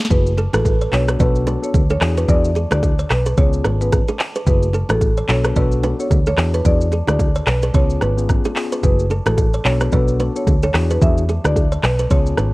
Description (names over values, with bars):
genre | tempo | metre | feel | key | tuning
afrobeats | 110 BPM | 4/4 | swing 58% on 16ths | unclear | A4 = 440 Hz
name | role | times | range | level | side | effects
afro-pop drum kit | drums | 0.0-12.5 s | handclaps, hi-hat, kick drum, rim click, shaker, snare drum | -18 LUFS | equal | none
bongos and congas | percussion | 0.0-12.5 s | none | -26 LUFS | right 3 dB | none
marimba with soft mallets | melody | 0.1-12.2 s | A4 to E5 | -24 LUFS | right 1 dB | tape echo
mellow tine electric piano | accompaniment | 0.1-12.5 s | A3 to A4 | -25 LUFS | left 4 dB | none
vintage muted fingered electric bass | bass | 0.1-12.5 s | F#1 to E2 | -18 LUFS | equal | none
buzzing kalimba | riff | 0.4-12.5 s | G#4 to D5 | -27 LUFS | right 2 dB | tape echo
room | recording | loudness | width
small room ambience | worn, warbling old tape, cassette tape, warbly pitch drift | -14 LUFS | side -20 dB against mid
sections
0.1-12.5 A section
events
none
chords
0.1 F#m9; 0.9 Bm7; 2.0 E9; 3.4 C#7; 4.5 F#m9; 5.3 Bm7; 6.4 E9; 7.7 C#7; 8.8 F#m9; 9.7 Bm7; 10.7 E9